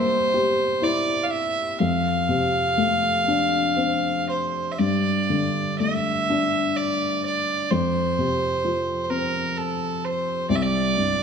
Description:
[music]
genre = celtic folk, Celtic slow air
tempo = 58-66 BPM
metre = 3/4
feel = rubato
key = G dorian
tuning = A4 = 440 Hz
[part]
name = warm fiddle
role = melody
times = 0.0-11.2 s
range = A4 to F5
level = -23 LUFS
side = right 2 dB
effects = none
[part]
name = dark upright piano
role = accompaniment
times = 0.0-11.2 s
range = C2 to G4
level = -24 LUFS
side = left 3 dB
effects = none
[sound]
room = moderate scoring stage reverb, RT60 1.9 s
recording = none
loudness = -20 LUFS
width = side -6 dB against mid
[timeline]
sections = 0.0-4.8 A section; 4.8-11.2 B section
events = none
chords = 0.0 C7; 1.8 F6; 4.8 Gsus2; 7.7 F5; 10.5 C5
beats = 0.83 | 1.79 2.77 3.77 | 4.79 5.80 6.78 | 7.72 8.64 9.56 | 10.49

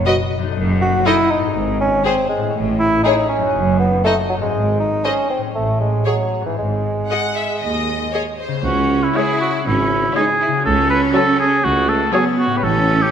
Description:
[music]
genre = cinematic, playful, whimsical film cue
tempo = 120 BPM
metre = 4/4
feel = straight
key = C# minor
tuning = A4 = 439 Hz
[part]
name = mellow bassoon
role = accompaniment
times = 0.0-8.4 s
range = E3 to F#4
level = -19 LUFS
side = right 1 dB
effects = none
[part]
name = concert harp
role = arpeggios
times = 0.0-13.1 s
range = F#2 to D#5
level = -26 LUFS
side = left 9 dB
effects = none
[part]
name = rich studio violin section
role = melody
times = 0.1-12.5 s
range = B#4 to D#5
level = -25 LUFS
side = left 4 dB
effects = none
[part]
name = rich studio violin section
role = second line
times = 0.1-12.5 s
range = E4 to F#5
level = -27 LUFS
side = left 3 dB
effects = none
[part]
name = rich studio viola section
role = accompaniment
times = 0.1-12.5 s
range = F#3 to G#4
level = -26 LUFS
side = equal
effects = none
[part]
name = rich studio cello section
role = bass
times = 0.6-13.1 s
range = D#2 to E4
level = -22 LUFS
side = right 2 dB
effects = none
[part]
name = rich studio double bass section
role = bass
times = 0.6-13.0 s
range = F#1 to D#2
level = -24 LUFS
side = right 2 dB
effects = none
[part]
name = mellow oboe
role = second line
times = 8.6-13.1 s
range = E4 to B4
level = -17 LUFS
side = right 1 dB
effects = none
[part]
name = mellow tuba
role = bass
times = 8.7-13.0 s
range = G#1 to C#2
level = -22 LUFS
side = right 3 dB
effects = none
[sound]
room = wet scoring stage reverb, RT60 1.7 s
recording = none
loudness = -15 LUFS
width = side -8 dB against mid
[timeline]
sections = 0.0-8.7 A section; 8.7-13.1 B section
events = none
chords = 0.0 B; 0.6 D#dim/F#; 1.6 G#; 2.5 Amaj7; 3.5 D#m/F#; 4.5 G#; 5.6 Amaj7; 6.6 G#; 8.7 C#m; 10.7 F#m/C#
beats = 0.07 | 0.56 1.06 1.56 2.06 | 2.55 3.05 3.55 4.05 | 4.55 5.05 5.55 6.07 | 6.58 7.10 7.62 8.14 | 8.65 9.16 9.66 10.16 | 10.65 11.15 11.64 12.13 | 12.63

